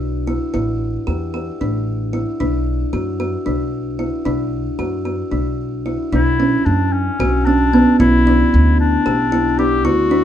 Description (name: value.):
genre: contemporary instrumental, chamber music in an uneven meter.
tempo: 226 BPM (eighths).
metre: 7/8.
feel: straight.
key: B minor.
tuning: A4 = 440 Hz.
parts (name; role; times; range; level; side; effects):
kalimba; arpeggios; 0.0-10.2 s; B3 to G4; -18 LUFS; right 1 dB; none.
upright bass; bass; 0.0-10.2 s; A1 to F#2; -20 LUFS; equal; none.
warm clarinet; second line; 6.1-10.2 s; C#4 to G4; -18 LUFS; left 4 dB; none.
room: light reverb.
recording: dark, warm production.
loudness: -15 LUFS.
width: side -10 dB against mid.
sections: 0.0-6.1 A section; 6.1-10.2 B section.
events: none.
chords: 0.0 Bm; 0.5 A7sus4; 2.4 Bm; 6.1 Bmadd9; 8.0 G/B (rootless).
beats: 0.01 0.27 | 0.54 0.81 1.08 1.34 1.61 1.88 2.14 | 2.41 2.67 2.94 3.20 3.47 3.73 4.00 | 4.26 4.52 4.79 5.06 5.32 5.59 5.87 | 6.13 6.40 6.67 6.93 7.20 7.47 7.73 | 8.00 8.27 8.54 8.80 9.06 9.33 9.59 | 9.86 10.12.